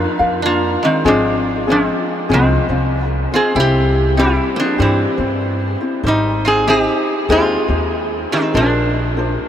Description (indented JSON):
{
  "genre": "Hawaiian",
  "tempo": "96 BPM",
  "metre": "4/4",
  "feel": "swing 63% on 8ths",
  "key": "unclear",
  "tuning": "A4 = 445 Hz",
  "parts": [
    { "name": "metal-body resonator slide guitar", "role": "melody", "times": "0.0-9.5 s", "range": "Eb3 to Ab4", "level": "-17 LUFS", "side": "equal", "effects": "none" },
    { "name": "koto", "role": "second line", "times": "0.0-9.5 s", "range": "G3 to F4", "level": "-24 LUFS", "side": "right 1 dB", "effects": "none" },
    { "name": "ukulele", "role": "accompaniment", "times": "0.0-9.5 s", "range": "C4 to F5", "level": "-19 LUFS", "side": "left 2 dB", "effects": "none" },
    { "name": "upright bass", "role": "bass", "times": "0.0-9.3 s", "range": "Ab1 to G2", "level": "-20 LUFS", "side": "equal", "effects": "none" }
  ],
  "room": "wet huge ambient reverb, RT60 8.7 s",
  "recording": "in a vast, echoing space",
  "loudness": "-13 LUFS",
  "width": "side -10 dB against mid",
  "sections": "0.0-9.5 A section",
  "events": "none",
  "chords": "0.0 Bb; 1.0 Fm/Ab; 3.5 C; 6.0 Abmaj7; 8.5 Bbadd9",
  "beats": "0.41 | 1.04 1.67 2.29 2.92 | 3.54 4.17 4.79 5.41 | 6.04 6.66 7.29 7.91 | 8.53 9.15"
}